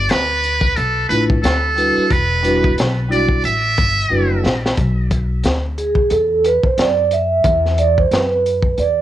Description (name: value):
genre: hip hop, jazz-hop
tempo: 90 BPM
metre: 4/4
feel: swing 59% on 16ths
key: E minor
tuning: A4 = 438 Hz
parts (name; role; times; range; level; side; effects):
- trumpet with metal mute; melody; 0.0-4.4 s; A4 to E5; -18 LUFS; right 2 dB; cassette tape, tape echo
- upright bass; bass; 0.0-9.0 s; E1 to F#2; -20 LUFS; left 1 dB; tube saturation
- crunchy breakbeat drum kit; drums; 0.1-9.0 s; hi-hat, kick drum, snare drum; -19 LUFS; left 1 dB; cassette tape
- vibraphone with soft mallets; accompaniment; 1.1-9.0 s; G3 to E5; -16 LUFS; right 2 dB; cassette tape
room: light reverb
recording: home recording on cassette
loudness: -14 LUFS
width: side -12 dB against mid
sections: 0.0-4.8 A section; 4.8-9.0 B section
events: drum fill 4.1-4.8; vibraphone solo 4.8-9.0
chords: 0.0 G69; 2.1 Em9; 4.8 Bm; 7.4 Esus2